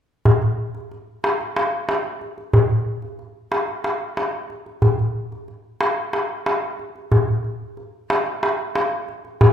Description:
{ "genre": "turkish", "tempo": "184 BPM (eighths)", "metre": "7/8", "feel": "straight", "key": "none", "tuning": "none", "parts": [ { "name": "darbuka", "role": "percussion", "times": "0.3-9.5 s", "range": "none", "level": "-19 LUFS", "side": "equal", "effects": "none" } ], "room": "wet recital hall reverb, RT60 1.3 s", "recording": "minimal, uncompressed stereo recording", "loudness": "-19 LUFS", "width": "side -9 dB against mid", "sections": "0.3-9.5 A section", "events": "none", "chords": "none", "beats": "| 0.26 0.58 0.91 1.24 1.56 1.89 2.22 | 2.54 2.87 3.20 3.52 3.85 4.18 4.50 | 4.83 5.16 5.49 5.81 6.14 6.47 6.79 | 7.12 7.45 7.77 8.10 8.43 8.76 9.08 | 9.41" }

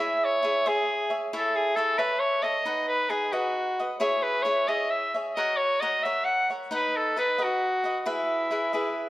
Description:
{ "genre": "mexican folk, mariachi", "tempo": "89 BPM (dotted quarters)", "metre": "6/8", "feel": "straight", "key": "unclear", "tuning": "A4 = 441 Hz", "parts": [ { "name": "bright soprano saxophone", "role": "melody", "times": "0.0-9.1 s", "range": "E4 to F#5", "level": "-25 LUFS", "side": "equal", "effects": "none" }, { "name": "cavaquinho", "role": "accompaniment", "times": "0.0-9.1 s", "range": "D#4 to F#5", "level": "-29 LUFS", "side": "equal", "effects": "none" } ], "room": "moderate recital hall reverb, RT60 1.8 s", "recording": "none", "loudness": "-24 LUFS", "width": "side -16 dB against mid", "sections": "0.0-9.1 A section", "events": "none", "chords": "0.0 C#m/E; 1.3 A; 2.7 B; 4.0 C#m; 5.4 F#; 6.7 B; 8.1 E", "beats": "0.65 | 1.32 1.99 | 2.66 3.34 | 4.02 4.69 | 5.37 6.05 | 6.72 7.40 | 8.07 8.75" }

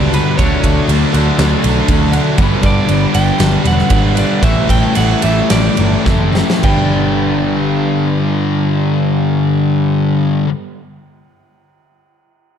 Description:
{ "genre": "rock, shoegaze and dream pop", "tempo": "102-120 BPM", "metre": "4/4", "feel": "straight", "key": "G lydian", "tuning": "A4 = 441 Hz", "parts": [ { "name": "electric guitar at the edge of break-up", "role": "melody", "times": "0.0-10.4 s", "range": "B4 to G5", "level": "-22 LUFS", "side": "right 4 dB", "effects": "tape echo" }, { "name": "picked twelve-string acoustic guitar", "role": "arpeggios", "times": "0.0-10.5 s", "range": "E3 to G4", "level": "-27 LUFS", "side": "left 5 dB", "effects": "analog chorus, tape echo" }, { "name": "distorted electric guitar", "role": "riff", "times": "0.0-10.5 s", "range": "G2 to D4", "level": "-20 LUFS", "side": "right 1 dB", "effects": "overdrive" }, { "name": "raw garage guitar", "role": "riff", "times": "0.0-10.5 s", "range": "G2 to G4", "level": "-20 LUFS", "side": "right 10 dB", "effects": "overdrive, reverse reverb" }, { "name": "thick fuzz guitar", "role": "riff", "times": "0.0-10.5 s", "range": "G2 to D4", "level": "-17 LUFS", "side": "left 8 dB", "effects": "distortion, analog chorus" }, { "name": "picked electric bass", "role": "bass", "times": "0.0-10.4 s", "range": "E1 to D2", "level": "-16 LUFS", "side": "right 1 dB", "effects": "none" }, { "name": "huge arena drum kit", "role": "drums", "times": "0.1-6.8 s", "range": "crash cymbal, kick drum, ride cymbal, snare drum", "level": "-17 LUFS", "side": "right 1 dB", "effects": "none" } ], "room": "light reverb, small room ambience", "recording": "dark, warm production", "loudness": "-11 LUFS", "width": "side -8 dB against mid", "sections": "0.0-6.6 A section; 6.6-11.3 B section", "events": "slowing down 2.4-6.6; drum fill 6.1-6.6", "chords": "0.4 Dmaj7; 2.4 Gmaj7; 4.4 A7sus4; 6.6 G", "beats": "| 0.40 0.89 1.39 1.89 | 2.39 2.89 3.39 3.90 | 4.42 4.95 5.50 6.06 | 6.64 7.22 7.81 8.40 | 8.99 9.58 10.16" }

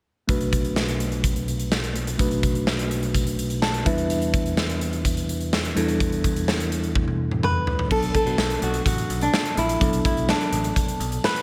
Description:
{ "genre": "1980s-style pop", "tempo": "126 BPM", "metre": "4/4", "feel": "straight", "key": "B minor", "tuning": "A4 = 440 Hz", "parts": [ { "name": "mellow tine electric piano", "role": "accompaniment", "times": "0.3-11.4 s", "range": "F#3 to A5", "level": "-30 LUFS", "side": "equal", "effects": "none" }, { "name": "modern bright picked electric bass", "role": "bass", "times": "0.3-11.2 s", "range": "A1 to B2", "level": "-30 LUFS", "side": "equal", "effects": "none" }, { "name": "big rock drum kit", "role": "drums", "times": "0.3-11.4 s", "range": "crash cymbal, hi-hat, kick drum, snare drum, toms", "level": "-27 LUFS", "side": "equal", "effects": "none" }, { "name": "flamenco guitar", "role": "melody", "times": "7.4-11.4 s", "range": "D4 to B4", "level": "-27 LUFS", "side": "equal", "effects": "none" } ], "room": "light reverb, small room ambience", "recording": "none", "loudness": "-23 LUFS", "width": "mono", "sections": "0.3-7.9 A section; 7.9-11.4 B section", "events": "tine electric piano fill 3.4-4.1; drum fill 7.0-7.9", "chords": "0.3 Bm7; 3.9 Em7; 7.9 Bm7", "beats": "| 0.29 0.76 1.24 1.72 | 2.19 2.67 3.15 3.62 | 4.10 4.57 5.05 5.53 | 6.00 6.48 6.96 7.43 | 7.91 8.38 8.86 9.34 | 9.81 10.29 10.76 11.24" }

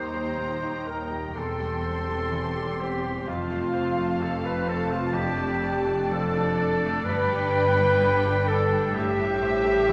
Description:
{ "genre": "cinematic", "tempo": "63 BPM", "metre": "4/4", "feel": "rubato", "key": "D dorian", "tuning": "A4 = 442 Hz", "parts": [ { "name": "muted studio violin section", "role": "melody", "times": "0.0-9.9 s", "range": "E5 to C6", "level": "-39 LUFS", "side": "equal", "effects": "none" }, { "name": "clear clarinet", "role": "second line", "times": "0.0-9.9 s", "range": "F4 to C5", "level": "-37 LUFS", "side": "equal", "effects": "none" }, { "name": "clear oboe", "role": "second line", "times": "0.0-9.9 s", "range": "F4 to C5", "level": "-36 LUFS", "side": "equal", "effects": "none" }, { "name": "mellow hollow large flute ensemble", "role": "second line", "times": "0.0-9.9 s", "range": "F5 to C6", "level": "-37 LUFS", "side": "equal", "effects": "none" }, { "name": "muted studio violin section", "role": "second line", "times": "0.0-9.9 s", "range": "D5 to G5", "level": "-42 LUFS", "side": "equal", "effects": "none" }, { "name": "clear grand piano", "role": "accompaniment", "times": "0.0-9.9 s", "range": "Eb2 to D5", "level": "-36 LUFS", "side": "equal", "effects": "none" }, { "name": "muted studio viola section", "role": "accompaniment", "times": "0.0-9.9 s", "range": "C4 to Eb4", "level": "-39 LUFS", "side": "equal", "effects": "none" }, { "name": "mellow French horn section", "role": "sustained chords", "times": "0.0-9.9 s", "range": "F4 to C5", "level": "-30 LUFS", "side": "equal", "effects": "none" }, { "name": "muted studio cello section", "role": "bass", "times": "0.0-9.9 s", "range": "Eb2 to A2", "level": "-35 LUFS", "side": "equal", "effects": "none" }, { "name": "muted symphonic double bass section", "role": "bass", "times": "0.0-9.9 s", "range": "E1 to Eb2", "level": "-35 LUFS", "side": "equal", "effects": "none" } ], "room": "wet recital hall reverb, RT60 1.5 s", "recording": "recorded in a church or concert hall", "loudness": "-25 LUFS", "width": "mono", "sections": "0.0-9.9 A section", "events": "none", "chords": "0.0 Eb; 1.4 C/E; 3.3 F; 5.2 Dm/F; 7.1 G; 8.9 Am7", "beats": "0.40 1.37 2.32 | 3.27 4.22 5.17 6.11 | 7.06 8.00 8.94 9.89" }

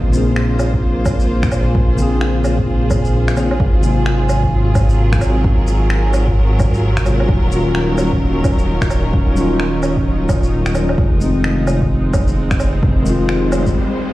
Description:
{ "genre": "future garage", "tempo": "130 BPM", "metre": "4/4", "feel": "swing 62% on 16ths", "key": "Bb minor", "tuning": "A4 = 440 Hz", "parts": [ { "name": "warm studio string section", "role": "sustained chords", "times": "0.0-14.1 s", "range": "Gb3 to C5", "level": "-22 LUFS", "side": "right 1 dB", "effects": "sidechain pumping" }, { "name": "dark detuned saw bass", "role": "bass", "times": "0.0-13.8 s", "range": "Eb1 to Bb1", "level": "-17 LUFS", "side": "equal", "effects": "sidechain pumping" }, { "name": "bell-like tine electric piano", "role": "accompaniment", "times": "0.1-13.8 s", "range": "C3 to Ab4", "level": "-20 LUFS", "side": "left 2 dB", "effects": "wide subtle chorus, sidechain pumping, tape echo" }, { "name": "electronic shaker, finger snaps and woodblock", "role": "drums", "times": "0.1-13.7 s", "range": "none", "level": "-24 LUFS", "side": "right 1 dB", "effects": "overdrive" }, { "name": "electronic kick drum", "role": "drums", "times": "0.7-13.7 s", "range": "none", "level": "-17 LUFS", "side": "equal", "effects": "overdrive" }, { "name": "riser", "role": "sound effects", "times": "12.4-14.1 s", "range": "none", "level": "-30 LUFS", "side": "left 2 dB", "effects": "none" } ], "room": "light reverb", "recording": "played on a big sound system in a bare room, stone room reverb", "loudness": "-13 LUFS", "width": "side -17 dB against mid", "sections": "0.0-14.1 A section", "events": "riser 12.4-14.1; break 13.8-14.1", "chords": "0.0 Bbm9; 3.6 Ab13; 7.3 Ebm9; 11.0 Fm7", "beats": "0.37 0.83 1.29 | 1.75 2.21 2.67 3.14 | 3.60 4.06 4.52 4.98 | 5.44 5.91 6.37 6.83 | 7.29 7.75 8.21 8.67 | 9.14 9.60 10.06 10.52 | 10.98 11.44 11.90 12.37 | 12.83 13.29 13.75" }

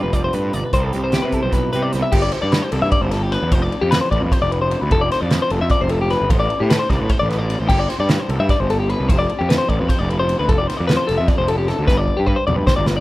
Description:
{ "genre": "math rock and midwest emo", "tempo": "301 BPM (eighths)", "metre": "7/8", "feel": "straight", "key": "unclear", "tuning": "A4 = 440 Hz", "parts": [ { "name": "twelve-string electric guitar", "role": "accompaniment", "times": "0.0-2.1 s", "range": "G2 to B4", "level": "-27 LUFS", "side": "right 5 dB", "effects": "none" }, { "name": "twelve-string electric guitar", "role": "arpeggios", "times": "0.0-13.0 s", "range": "G4 to E5", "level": "-20 LUFS", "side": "left 3 dB", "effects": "none" }, { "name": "fuzz picked electric bass", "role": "bass", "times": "0.0-13.0 s", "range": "F1 to C3", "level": "-20 LUFS", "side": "equal", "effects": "overdrive" }, { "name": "loose indie drum kit", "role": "drums", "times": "0.1-13.0 s", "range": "crash cymbal, hi-hat, kick drum, ride cymbal, snare drum, toms", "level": "-20 LUFS", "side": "equal", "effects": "none" } ], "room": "light reverb, small room reverb", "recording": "rough home demo mix", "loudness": "-16 LUFS", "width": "side -17 dB against mid", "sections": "0.0-2.1 A section; 2.1-13.0 B section", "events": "drum fill 11.9-13.0", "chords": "0.0 G7sus4; 0.7 Cmaj7; 2.1 Gsus24; 3.5 F5; 4.9 Dm7/F; 6.3 Amadd9; 7.7 Gsus24; 9.1 F5; 10.5 Dm7/F; 11.9 G", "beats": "0.14 0.34 0.54 | 0.73 0.93 1.13 1.33 1.53 1.73 1.93 | 2.13 2.33 2.53 2.73 2.93 3.13 3.33 | 3.52 3.72 3.92 4.12 4.32 4.52 4.72 | 4.92 5.12 5.32 5.51 5.71 5.91 6.11 | 6.31 6.51 6.71 6.91 7.11 7.31 7.50 | 7.70 7.90 8.10 8.30 8.50 8.70 8.90 | 9.10 9.30 9.50 9.70 9.89 10.09 10.29 | 10.49 10.69 10.89 11.09 11.29 11.49 11.69 | 11.89 12.09 12.29 12.49 12.69 12.88" }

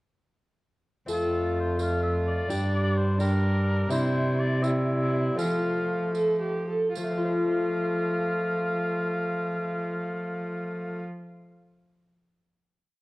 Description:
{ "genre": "classical, renaissance-style consort dance", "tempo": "72-85 BPM (dotted quarters)", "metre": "6/8", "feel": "straight", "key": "F major", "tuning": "A4 = 438 Hz", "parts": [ { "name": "warm oboe", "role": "melody", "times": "1.1-11.0 s", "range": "A4 to F5", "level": "-34 LUFS", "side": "left 1 dB", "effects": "none" }, { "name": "warm viola", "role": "second line", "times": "1.1-11.0 s", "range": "D4 to A4", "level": "-33 LUFS", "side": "right 2 dB", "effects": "none" }, { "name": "lute", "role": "accompaniment", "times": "1.1-11.8 s", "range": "F2 to C5", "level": "-32 LUFS", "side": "left 3 dB", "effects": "none" }, { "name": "mellow bassoon", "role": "accompaniment", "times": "1.1-11.0 s", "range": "G3 to A3", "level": "-31 LUFS", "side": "left 1 dB", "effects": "none" }, { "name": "rich cello", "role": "bass", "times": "1.1-11.0 s", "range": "F2 to F3", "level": "-28 LUFS", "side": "equal", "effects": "none" }, { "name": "tambourine", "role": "percussion", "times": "1.1-7.2 s", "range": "none", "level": "-46 LUFS", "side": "right 6 dB", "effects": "none" } ], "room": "wet recital hall reverb, RT60 1.5 s", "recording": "worn, warbling old tape, cassette tape, warbly pitch drift", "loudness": "-24 LUFS", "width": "side -20 dB against mid", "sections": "1.1-7.0 A section; 7.0-10.3 final chord", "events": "slowing down 3.2-7.0", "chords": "1.1 F; 2.5 Gm; 3.9 C; 5.4 F", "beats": "| 1.09 1.80 | 2.51 3.21 | 3.92 4.64 | 5.38 6.16 | 6.97 7.79 | 8.62 9.44" }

